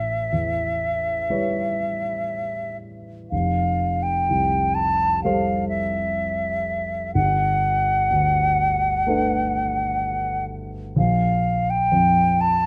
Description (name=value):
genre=classical, impressionist duo for flute and grand piano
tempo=62 BPM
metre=4/4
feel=rubato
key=unclear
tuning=A4 = 445 Hz
part: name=silver concert flute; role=melody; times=0.0-12.7 s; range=E5 to A5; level=-24 LUFS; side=equal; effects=none
part: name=dark concert grand piano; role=accompaniment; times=0.0-12.7 s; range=F1 to C#5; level=-27 LUFS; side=equal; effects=none
room=moderate recital hall reverb, RT60 1.7 s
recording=close, detailed microphones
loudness=-22 LUFS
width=mono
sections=0.0-12.7 A section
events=none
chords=0.0 A9; 3.3 Fadd9; 7.2 Gmaj9; 11.0 Bb5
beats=0.34 1.31 2.31 | 3.32 4.30 5.24 6.19 | 7.15 8.11 9.07 10.01 | 10.97 11.94